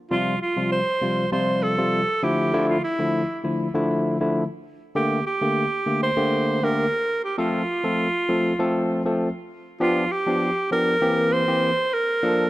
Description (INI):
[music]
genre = afrobeats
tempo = 99 BPM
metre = 4/4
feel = straight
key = unclear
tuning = A4 = 440 Hz
[part]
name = breathy alto saxophone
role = melody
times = 0.1-12.5 s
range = E4 to C5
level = -23 LUFS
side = right 2 dB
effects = plate reverb, tape echo
[part]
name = barky tine electric piano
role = accompaniment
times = 0.1-12.5 s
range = C3 to A4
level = -23 LUFS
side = left 1 dB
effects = plate reverb
[sound]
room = moderate studio reverb, RT60 0.5 s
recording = dark, warm production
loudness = -20 LUFS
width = side -16 dB against mid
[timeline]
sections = 0.1-9.8 A section; 9.8-12.5 B section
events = none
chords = 0.1 Csus4; 2.2 Dmadd9; 5.0 Gmadd9; 7.4 F; 9.8 G7; 11.0 C7